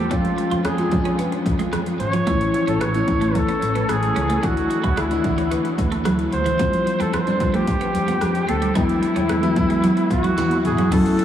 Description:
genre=1980s-style pop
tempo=111 BPM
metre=4/4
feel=straight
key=unclear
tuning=A4 = 440 Hz
part: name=clear flugelhorn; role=melody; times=0.0-11.2 s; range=E4 to C#5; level=-23 LUFS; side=right 1 dB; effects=tape echo
part: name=FM electric piano with soft pad layer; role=accompaniment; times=0.0-11.2 s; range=E3 to F4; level=-22 LUFS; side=left 2 dB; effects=chorus, tremolo
part: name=twelve-string electric guitar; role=riff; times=0.0-11.2 s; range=E3 to E#4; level=-26 LUFS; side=right 4 dB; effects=analog chorus, tape echo
part: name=fretless electric bass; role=bass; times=0.0-11.1 s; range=G#1 to F#2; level=-25 LUFS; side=equal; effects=wide subtle chorus
part: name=80s electronic pad drums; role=drums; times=0.1-11.2 s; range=crash cymbal, hi-hat, kick drum, rim click, snare drum, toms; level=-27 LUFS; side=equal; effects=gated reverb on snare and toms, overdrive
part: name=ethereal airy pad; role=sustained chords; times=11.2 s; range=none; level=barely audible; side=none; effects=none
room=wet huge ambient reverb, RT60 7.9 s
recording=dreamy mix soaked in reverb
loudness=-18 LUFS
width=side -10 dB against mid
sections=0.0-10.9 A section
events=drum fill 10.4-10.9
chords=0.1 C#/E#; 2.3 A; 4.4 Dsus2; 6.6 Fsus2; 8.8 Eadd9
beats=| 0.11 0.65 1.19 1.73 | 2.27 2.81 3.35 3.89 | 4.43 4.97 5.51 6.05 | 6.59 7.13 7.68 8.22 | 8.76 9.30 9.84 10.38 | 10.92

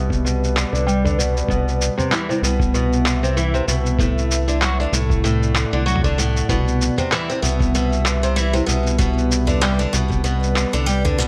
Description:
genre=folktronica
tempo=96 BPM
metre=4/4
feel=swing 56% on 16ths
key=C lydian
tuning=A4 = 441 Hz
part: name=warbly tape-like pad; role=sustained chords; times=0.0-11.3 s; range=G3 to F#5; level=-29 LUFS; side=equal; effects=chorus, built-in reverb
part: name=picked twelve-string acoustic guitar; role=arpeggios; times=0.0-11.3 s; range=A2 to G3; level=-24 LUFS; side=equal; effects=low-pass filter, digital delay
part: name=round analog bass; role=bass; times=0.0-11.3 s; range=C2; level=-23 LUFS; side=equal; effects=none
part: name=electronic kick drum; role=drums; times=0.1-10.2 s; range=none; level=-24 LUFS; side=equal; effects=none
part: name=lo-fi sampler-style drum kit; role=drums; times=0.1-11.3 s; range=cabasa, handclaps, toms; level=-26 LUFS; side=equal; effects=none
room=light reverb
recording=none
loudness=-19 LUFS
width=mono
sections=0.0-11.3 A section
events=filter sweep on twelve-string acoustic guitar 0.0-11.3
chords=0.0 Cmaj7; 4.0 D/C; 6.5 Cmaj7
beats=0.24 0.87 | 1.49 2.12 2.74 3.37 | 3.99 4.62 5.24 5.87 | 6.49 7.12 7.74 8.37 | 8.99 9.62 10.24 10.87

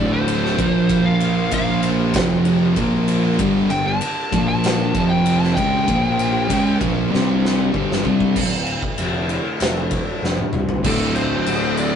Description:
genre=stoner and doom metal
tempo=97 BPM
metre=4/4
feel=straight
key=D minor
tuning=A4 = 439 Hz
part: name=fuzz lead guitar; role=melody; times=0.0-6.8, 10.9-12.0 s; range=A4 to A5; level=-23 LUFS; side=equal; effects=distortion
part: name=analog drone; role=sustained chords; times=0.2-12.0 s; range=D3 to E5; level=-33 LUFS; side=equal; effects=none
part: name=distorted electric guitar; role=riff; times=0.0-12.0 s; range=D2 to F4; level=-27 LUFS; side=right 1 dB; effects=distortion
part: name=thick fuzz guitar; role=riff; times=0.0-12.0 s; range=D2 to C#4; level=-21 LUFS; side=left 3 dB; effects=distortion
part: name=thick fuzz guitar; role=riff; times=0.0-12.0 s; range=D2 to C#4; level=-22 LUFS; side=right 6 dB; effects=distortion
part: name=fuzz fingered electric bass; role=bass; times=0.0-11.9 s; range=D1 to C#2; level=-25 LUFS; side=equal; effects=overdrive
part: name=oversized low-tuned drum kit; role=drums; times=0.3-11.9 s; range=crash cymbal, kick drum, ride cymbal, snare drum, toms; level=-23 LUFS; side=left 1 dB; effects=none
room=wet studio reverb, RT60 0.6 s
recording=rough rehearsal-room recording, tube saturation, nothing above 11.0 kHz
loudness=-16 LUFS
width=side -8 dB against mid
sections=0.0-8.4 A section; 8.4-10.8 B section; 10.8-12.0 C section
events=lead electric guitar solo 0.0-8.4; drum fill 7.1-8.4, 10.2-10.8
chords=0.0 D5; 0.6 Bb5; 2.1 F5; 2.8 Bb5; 3.4 G5; 4.3 Bb5; 4.9 F5; 5.6 G5; 5.9 Bb5; 6.5 G5; 7.1 C5; 7.7 G5; 8.4 Dm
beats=0.28 | 0.90 1.52 2.15 2.77 | 3.39 4.01 4.64 5.26 | 5.88 6.50 7.12 7.74 | 8.36 8.98 9.60 10.22 | 10.85 11.46

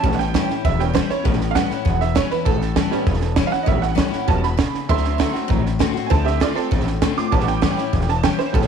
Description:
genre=rockabilly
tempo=198 BPM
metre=4/4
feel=straight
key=A mixolydian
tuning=A4 = 439 Hz
part: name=picked steel-string acoustic guitar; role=accompaniment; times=0.0-8.7 s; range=E2 to F#4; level=-24 LUFS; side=left 13 dB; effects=none
part: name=tack piano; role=accompaniment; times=0.0-8.7 s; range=F3 to D6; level=-23 LUFS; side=right 12 dB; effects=none
part: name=upright bass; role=bass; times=0.0-8.7 s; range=E1 to D2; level=-22 LUFS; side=left 1 dB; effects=none
part: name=compact cocktail drum kit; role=drums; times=0.0-8.7 s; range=hi-hat, kick drum, snare drum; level=-22 LUFS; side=right 3 dB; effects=none
room=light reverb, small room ambience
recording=1960s-style stereo with parts hard left and right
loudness=-17 LUFS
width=side -7 dB against mid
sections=0.0-8.7 A section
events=honky-tonk piano solo 0.0-8.7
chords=0.0 A7; 4.9 D7; 6.1 Dm7; 7.3 A7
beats=| 0.03 0.33 0.64 0.94 | 1.24 1.55 1.85 2.15 | 2.46 2.76 3.06 3.37 | 3.67 3.98 4.28 4.58 | 4.89 5.19 5.50 5.80 | 6.10 6.41 6.71 7.02 | 7.32 7.62 7.93 8.23 | 8.54

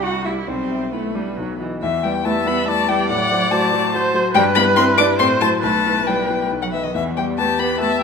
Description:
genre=quick classical-period movement for piano quartet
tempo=131-145 BPM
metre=3/4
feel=rubato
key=E minor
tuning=A4 = 440 Hz
part: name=warm violin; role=melody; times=0.0-8.0 s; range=B4 to D6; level=-20 LUFS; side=left 8 dB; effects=none
part: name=warm cello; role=second line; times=0.0-8.0 s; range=D#3 to F#4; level=-24 LUFS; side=right 4 dB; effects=none
part: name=rich viola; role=accompaniment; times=0.0-8.0 s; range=E3 to E5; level=-22 LUFS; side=right 2 dB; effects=none
part: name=warm grand piano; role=accompaniment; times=0.0-8.0 s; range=B1 to E5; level=-22 LUFS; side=left 3 dB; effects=none
room=moderate recital hall reverb, RT60 1.5 s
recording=minimal, uncompressed stereo recording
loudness=-16 LUFS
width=side -6 dB against mid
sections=0.0-1.8 A section; 1.8-8.0 B section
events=none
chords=0.5 Em/B; 1.4 B; 1.8 Em; 3.1 F#dim/A; 4.3 Em/G; 5.2 F#m7b5/A; 5.6 Em/B; 6.5 B; 7.0 Em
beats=0.03 | 0.48 0.93 1.38 | 1.82 2.25 2.68 | 3.10 3.52 3.93 | 4.35 4.77 5.20 | 5.63 6.08 6.51 | 6.95 7.38 7.80

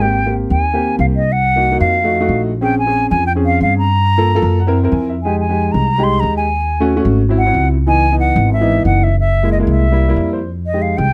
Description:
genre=Afro-Cuban jazz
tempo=183 BPM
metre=4/4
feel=straight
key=unclear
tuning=A4 = 440 Hz
part: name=hollow concert flute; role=melody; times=0.0-11.1 s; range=Eb5 to C6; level=-19 LUFS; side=equal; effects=none
part: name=warm upright piano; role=accompaniment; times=0.0-11.0 s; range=Fb3 to Bb5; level=-20 LUFS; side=equal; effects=none
part: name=upright bass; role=bass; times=0.0-11.1 s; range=Gb1 to G2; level=-18 LUFS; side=equal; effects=none
room=little or no reverb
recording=close, detailed microphones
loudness=-15 LUFS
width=mono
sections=0.0-10.5 A section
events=upright piano fill 4.3-5.2, 10.0-10.5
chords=0.0 Abmaj9; 1.3 Cm7b5; 2.0 F7b9; 2.6 Bbm7; 3.9 Gm7; 4.6 Gb7#11; 5.2 Fm7; 6.6 Ebm7b5; 7.2 Ab7b13; 7.9 Dbm9; 9.2 Gb9; 9.8 C7; 10.5 Fm7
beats=| 0.01 0.34 0.66 0.99 | 1.32 1.64 1.97 2.30 | 2.62 2.95 3.28 3.61 | 3.93 4.26 4.59 4.92 | 5.25 5.57 5.90 6.23 | 6.56 6.88 7.21 7.54 | 7.87 8.20 8.53 8.86 | 9.18 9.51 9.84 10.17 | 10.50 10.82

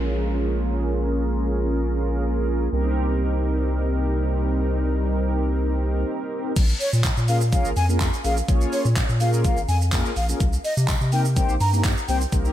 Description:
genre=dance-pop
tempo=125 BPM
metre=4/4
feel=straight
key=Bb dorian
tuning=A4 = 440 Hz
part: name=mellow synth brass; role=accompaniment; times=0.0-12.5 s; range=Bb3 to Db5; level=-27 LUFS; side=equal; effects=chorus, sidechain pumping, low-pass filter, slapback echo
part: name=chorused pulse-width pad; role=sustained chords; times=0.0-6.5 s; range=C3 to Eb4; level=-31 LUFS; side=right 2 dB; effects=sidechain pumping, low-pass filter
part: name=round analog bass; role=bass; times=0.0-12.5 s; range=Ab1 to C3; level=-22 LUFS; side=equal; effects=sidechain pumping
part: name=downlifter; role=sound effects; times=0.0-2.7 s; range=none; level=-41 LUFS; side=left 1 dB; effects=none
part: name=pop drum kit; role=drums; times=6.6-12.5 s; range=crash cymbal, handclaps, hi-hat, kick drum, shaker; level=-24 LUFS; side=equal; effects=overdrive
part: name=mellow hollow concert flute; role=melody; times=6.8-12.2 s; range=Db5 to Bb5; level=-28 LUFS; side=left 1 dB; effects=ping-pong delay
part: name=tambourine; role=percussion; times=7.0-12.0 s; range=none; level=-41 LUFS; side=right 9 dB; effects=none
room=light reverb, digital ambience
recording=none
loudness=-20 LUFS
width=side -12 dB against mid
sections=0.0-6.6 A section; 6.6-12.5 B section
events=filter sweep 0.0-6.6; break 6.1-6.6; drop 6.6-12.5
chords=0.0 Bbm7; 2.7 Cm7; 6.6 Bbm7; 10.4 Cm7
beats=0.33 | 0.81 1.28 1.76 2.25 | 2.73 3.21 3.69 4.17 | 4.64 5.12 5.61 6.08 | 6.57 7.04 7.53 8.01 | 8.48 8.96 9.45 9.93 | 10.40 10.88 11.37 11.85 | 12.32

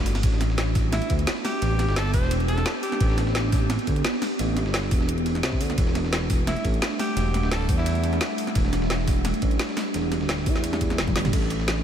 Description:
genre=liquid drum and bass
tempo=173 BPM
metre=4/4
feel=straight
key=A dorian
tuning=A4 = 438 Hz
part: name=ethereal airy pad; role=sustained chords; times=0.0-11.8 s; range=G3 to F#5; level=-29 LUFS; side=right 1 dB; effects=ensemble chorus, built-in reverb
part: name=smooth synth bass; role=bass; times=0.0-11.8 s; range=D1 to E2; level=-25 LUFS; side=equal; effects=none
part: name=drum and bass drum kit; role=drums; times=0.1-11.8 s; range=crash cymbal, hi-hat, snare drum, toms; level=-29 LUFS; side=equal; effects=none
part: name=dusty soul sampler-style drum kit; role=drums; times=0.1-11.8 s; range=hi-hat, ride cymbal, snare drum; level=-36 LUFS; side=right 1 dB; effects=overdrive, high-pass filter on cymbals, high-pass filter on snare, high-pass filter on hats
part: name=electronic kick drum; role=drums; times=0.2-11.4 s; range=none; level=-25 LUFS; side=equal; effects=none
part: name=clear alto saxophone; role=melody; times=0.9-3.2, 6.5-8.3 s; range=E4 to C5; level=-33 LUFS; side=equal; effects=ping-pong delay
room=light reverb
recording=none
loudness=-21 LUFS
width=side -9 dB against mid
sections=0.0-11.3 A section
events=drop 0.0-11.3; drum fill 11.1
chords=0.2 Am11; 5.8 Em11; 11.3 Am11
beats=| 0.23 0.58 0.93 1.27 | 1.62 1.97 2.31 2.66 | 3.01 3.35 3.70 4.05 | 4.39 4.74 5.09 5.43 | 5.78 6.13 6.47 6.82 | 7.17 7.51 7.86 8.21 | 8.55 8.90 9.25 9.60 | 9.94 10.29 10.64 10.98 | 11.33 11.68

